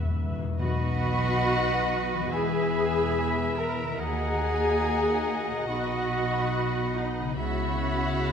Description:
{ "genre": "cinematic, emotional film score for orchestra", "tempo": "71 BPM", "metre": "4/4", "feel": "rubato", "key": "B major", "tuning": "A4 = 438 Hz", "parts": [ { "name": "muted studio violin section", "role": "melody", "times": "0.0-8.3 s", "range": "D#5 to A#5", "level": "-36 LUFS", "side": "left 5 dB", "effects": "none" }, { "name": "muted studio violin section", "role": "second line", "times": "0.0-8.3 s", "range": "F#4 to B5", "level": "-36 LUFS", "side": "left 2 dB", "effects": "none" }, { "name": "muted symphonic viola section", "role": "accompaniment", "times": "0.0-8.3 s", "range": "D#4 to E5", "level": "-30 LUFS", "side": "left 1 dB", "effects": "none" }, { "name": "concert harp", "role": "arpeggios", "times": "0.0-8.3 s", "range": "B2 to E6", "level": "-37 LUFS", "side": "left 7 dB", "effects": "none" }, { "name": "muted studio double bass section", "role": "bass", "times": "0.0-8.3 s", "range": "E1 to E2", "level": "-33 LUFS", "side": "right 4 dB", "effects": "none" }, { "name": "timpani", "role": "percussion", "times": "0.0-1.9 s", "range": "E2 to B2", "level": "-30 LUFS", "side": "left 2 dB", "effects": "none" }, { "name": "clear oboe", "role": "second line", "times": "0.6-8.3 s", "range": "D#5 to F#5", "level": "-36 LUFS", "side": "right 2 dB", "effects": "none" }, { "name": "flute section", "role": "second line", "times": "0.6-8.3 s", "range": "A#5 to B5", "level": "-36 LUFS", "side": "equal", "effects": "none" }, { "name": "warm clarinet", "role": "second line", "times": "0.6-8.3 s", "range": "B4 to D#5", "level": "-38 LUFS", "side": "left 2 dB", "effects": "none" }, { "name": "mellow French horn section", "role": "sustained chords", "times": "0.6-8.3 s", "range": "A#3 to F#4", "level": "-36 LUFS", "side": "left 3 dB", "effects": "none" }, { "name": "muted studio cello section", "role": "bass", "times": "0.6-8.3 s", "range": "D#2 to C#3", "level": "-37 LUFS", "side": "right 4 dB", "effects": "none" } ], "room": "moderate scoring stage reverb, RT60 1.9 s", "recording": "none", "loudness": "-24 LUFS", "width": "side -7 dB against mid", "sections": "0.6-8.3 A section", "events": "timpani fill 0.0-0.6", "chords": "0.0 Esus2; 0.6 B; 2.3 E; 4.0 D#m; 5.7 B; 7.4 C#m7", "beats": "| 0.59 1.46 2.32 3.16 | 4.00 4.83 5.68 6.54 | 7.38 8.19" }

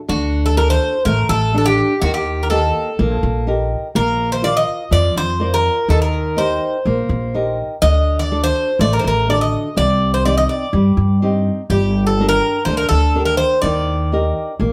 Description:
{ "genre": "greek folk, Greek bouzouki band", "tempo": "124 BPM", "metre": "4/4", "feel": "straight", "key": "unclear", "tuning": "A4 = 440 Hz", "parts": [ { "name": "Greek bouzouki", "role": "melody", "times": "0.1-14.7 s", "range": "F#4 to Eb5", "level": "-21 LUFS", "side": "equal", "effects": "slapback echo" }, { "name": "flamenco guitar", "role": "accompaniment", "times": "0.1-14.7 s", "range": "C3 to F#5", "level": "-23 LUFS", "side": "equal", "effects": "none" }, { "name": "upright bass", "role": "bass", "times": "0.1-14.7 s", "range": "G1 to G2", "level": "-20 LUFS", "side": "equal", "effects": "none" } ], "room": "moderate studio reverb, RT60 0.6 s", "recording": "heard from further back in the room", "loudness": "-17 LUFS", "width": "mono", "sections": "0.1-14.7 A section", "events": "none", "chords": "0.1 D; 2.0 Eb; 4.0 Bb; 5.9 Eb; 7.8 D; 9.8 Cm; 11.7 Gm; 13.6 Eb", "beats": "| 0.09 0.57 1.05 1.54 | 2.02 2.50 2.99 3.47 | 3.95 4.44 4.92 5.41 | 5.89 6.38 6.86 7.34 | 7.83 8.31 8.80 9.28 | 9.77 10.25 10.73 11.22 | 11.70 12.18 12.67 13.15 | 13.63 14.12 14.60" }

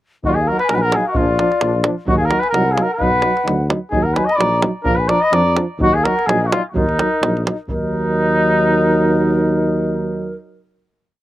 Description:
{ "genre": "balkan folk, Balkan brass band", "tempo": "128 BPM", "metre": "2/4", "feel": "swing 54% on 16ths", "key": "Eb harmonic minor", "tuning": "A4 = 440 Hz", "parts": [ { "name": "clear trombone", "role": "accompaniment", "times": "0.2-10.4 s", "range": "D4 to Eb4", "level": "-26 LUFS", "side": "left 4 dB", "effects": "none" }, { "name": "mellow tuba", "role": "bass", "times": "0.2-10.3 s", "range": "Bb1 to F2", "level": "-21 LUFS", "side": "equal", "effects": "none" }, { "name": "davul", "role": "percussion", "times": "0.2-7.9 s", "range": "none", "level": "-22 LUFS", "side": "right 1 dB", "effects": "none" }, { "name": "mellow trumpet", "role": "melody", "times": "0.3-10.3 s", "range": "Eb4 to Eb5", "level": "-18 LUFS", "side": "left 1 dB", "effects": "slapback echo" }, { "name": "mellow bass bansuri", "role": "second line", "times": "0.3-10.3 s", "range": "Bb4 to Cb6", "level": "-22 LUFS", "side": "left 1 dB", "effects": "none" }, { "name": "dark euphonium", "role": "accompaniment", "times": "0.3-10.4 s", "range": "F3 to Gb3", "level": "-22 LUFS", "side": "right 3 dB", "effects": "none" } ], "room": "little or no reverb", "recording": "recorded outdoors, with no room sound", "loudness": "-14 LUFS", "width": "side -14 dB against mid", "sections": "0.2-7.7 A section; 7.7-9.6 final chord", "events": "none", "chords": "0.2 Ebm; 1.2 Bb; 2.1 Ebm; 3.0 B; 3.9 Ebm; 4.9 Bb; 5.8 Ebm", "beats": "| 0.24 0.70 | 1.16 1.62 | 2.08 2.54 | 3.00 3.47 | 3.93 4.40 | 4.87 5.33 | 5.80 6.28 | 6.75 7.22 | 7.69 8.17 | 8.64 9.11" }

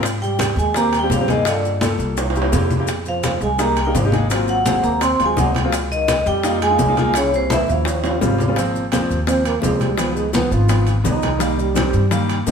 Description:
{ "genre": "Afro-Cuban jazz", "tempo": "169 BPM", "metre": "4/4", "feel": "straight", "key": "Ab major from 8.6 s", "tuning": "A4 = 440 Hz", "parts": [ { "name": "warm baby grand piano", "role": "accompaniment", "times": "0.0-12.5 s", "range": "Eb3 to Bb4", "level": "-22 LUFS", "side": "left 1 dB", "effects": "none" }, { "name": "upright bass", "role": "bass", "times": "0.0-12.5 s", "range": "Ab1 to Ab2", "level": "-22 LUFS", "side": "equal", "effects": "none" }, { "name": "bongos", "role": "percussion", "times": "0.0-12.5 s", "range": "none", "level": "-29 LUFS", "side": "left 4 dB", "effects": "none" }, { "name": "congas", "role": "percussion", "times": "0.1-12.5 s", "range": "none", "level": "-25 LUFS", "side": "left 2 dB", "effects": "none" }, { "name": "maracas", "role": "percussion", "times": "0.1-12.5 s", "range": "none", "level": "-33 LUFS", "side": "left 5 dB", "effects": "none" }, { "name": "timbales", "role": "percussion", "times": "0.1-12.5 s", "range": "none", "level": "-27 LUFS", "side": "right 3 dB", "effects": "none" }, { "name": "vibraphone with medium mallets", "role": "melody", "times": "0.2-8.4 s", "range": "C5 to C6", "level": "-21 LUFS", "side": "equal", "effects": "none" }, { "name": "breathy trombone", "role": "second line", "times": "0.2-12.5 s", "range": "C3 to F4", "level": "-24 LUFS", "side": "right 4 dB", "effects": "none" } ], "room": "wet stone room reverb, RT60 1.2 s", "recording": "band playing live in one room", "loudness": "-16 LUFS", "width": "side -6 dB against mid", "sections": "0.0-8.6 A section; 8.6-12.5 B section", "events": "drum fill 2.2-2.9, 7.9-8.6; trombone solo 8.6-12.5", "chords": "0.1 Abmaj9; 1.5 Gm9; 2.2 C7; 2.9 Fm11; 4.3 Ab13; 5.7 Db69; 7.2 C7b9; 7.9 Eb13; 8.6 Ab69; 10.0 Db9; 11.4 Cm7", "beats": "| 0.05 0.41 0.76 1.11 | 1.47 1.82 2.18 2.53 | 2.89 3.24 3.60 3.95 | 4.31 4.67 5.02 5.38 | 5.73 6.08 6.44 6.79 | 7.15 7.50 7.86 8.21 | 8.57 8.93 9.28 9.64 | 9.99 10.35 10.70 11.06 | 11.41 11.77 12.12 12.48" }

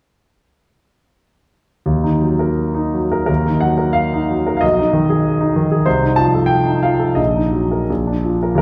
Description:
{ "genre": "classical, romantic character piece for solo piano", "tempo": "82-100 BPM", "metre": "2/4", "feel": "rubato", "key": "Eb minor", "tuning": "A4 = 440 Hz", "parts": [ { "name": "warm concert grand piano", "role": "solo", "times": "1.9-8.6 s", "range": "Bb1 to A5", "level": "-16 LUFS", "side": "equal", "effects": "none" } ], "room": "wet recital hall reverb, RT60 1.5 s", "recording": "heard from further back in the room", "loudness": "-17 LUFS", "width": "mono", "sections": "1.9-3.3 A section; 3.3-8.6 B section", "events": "none", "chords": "1.9 Ebm; 4.6 Abm/Cb; 5.9 F7/C; 7.2 Ebm/Bb; 7.9 Bb", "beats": "| 1.87 2.58 | 3.29 3.97 | 4.63 5.24 | 5.86 6.51 | 7.19 7.90 | 8.62" }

